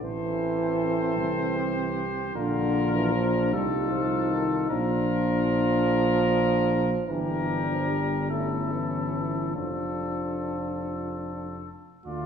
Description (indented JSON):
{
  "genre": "classical, brass quintet",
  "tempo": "47-52 BPM (dotted quarters)",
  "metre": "6/8",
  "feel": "rubato",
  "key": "D minor",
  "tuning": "A4 = 443 Hz",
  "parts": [
    { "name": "clear trumpet", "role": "melody", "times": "0.0-12.3 s", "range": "A4 to D5", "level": "-33 LUFS", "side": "left 6 dB", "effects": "none" },
    { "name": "warm flugelhorn", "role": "second line", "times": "0.0-12.3 s", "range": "E4 to A4", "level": "-33 LUFS", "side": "right 3 dB", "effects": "none" },
    { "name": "mellow trombone", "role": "accompaniment", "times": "0.0-12.3 s", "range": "D3 to A3", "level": "-29 LUFS", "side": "right 3 dB", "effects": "none" },
    { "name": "warm French horn", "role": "accompaniment", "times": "0.0-12.3 s", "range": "A3 to Eb4", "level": "-31 LUFS", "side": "left 3 dB", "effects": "none" },
    { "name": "dark tuba", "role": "bass", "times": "0.0-12.3 s", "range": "F1 to D2", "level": "-30 LUFS", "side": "equal", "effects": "none" }
  ],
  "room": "wet recital hall reverb, RT60 1.4 s",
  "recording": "heard from further back in the room",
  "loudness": "-24 LUFS",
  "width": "side -7 dB against mid",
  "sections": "0.0-12.1 A section",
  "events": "none",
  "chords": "0.0 Am; 2.3 Bb; 3.5 F7/C; 4.7 Bb; 7.1 Em7b5/G; 8.3 A7/G; 9.6 Dm/F"
}